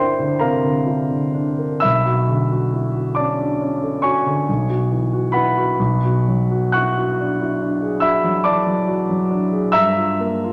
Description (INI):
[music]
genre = classical, impressionist solo piano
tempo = 41-49 BPM (dotted quarters)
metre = 9/8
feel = rubato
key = unclear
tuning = A4 = 440 Hz
[part]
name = warm concert grand piano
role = solo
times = 0.0-10.5 s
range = B1 to F#6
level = -19 LUFS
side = equal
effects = none
[sound]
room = wet scoring stage reverb, RT60 1.9 s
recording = none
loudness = -19 LUFS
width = mono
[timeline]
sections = 0.0-10.5 A section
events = none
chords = 0.0 Gm6; 1.8 Bm9; 4.5 C#m7/B; 5.8 Bm6; 9.7 Gm7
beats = 0.41 | 1.83 3.17 4.48 | 5.79 7.17 8.43 | 9.71